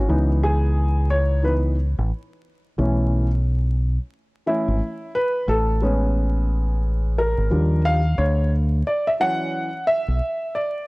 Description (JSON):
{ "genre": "hip hop, jazz-hop", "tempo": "89 BPM", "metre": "4/4", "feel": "swing 62% on 16ths", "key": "C# minor", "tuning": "A4 = 441 Hz", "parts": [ { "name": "dark grand piano", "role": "accompaniment", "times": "0.0-10.9 s", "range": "E3 to F#5", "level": "-22 LUFS", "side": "equal", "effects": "none" }, { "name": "deep dub fingered electric bass", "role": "bass", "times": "0.0-10.2 s", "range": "G#1 to D#2", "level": "-19 LUFS", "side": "equal", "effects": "none" } ], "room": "small room ambience", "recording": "dry, gritty hardware recording, vinyl crackle", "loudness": "-19 LUFS", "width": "side -24 dB against mid", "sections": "0.1-10.9 A section", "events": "grand piano solo 0.1-10.9", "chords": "0.1 C#m9; 2.8 B9sus4; 5.5 Amaj9; 7.5 D#maj9; 8.2 Dmaj9" }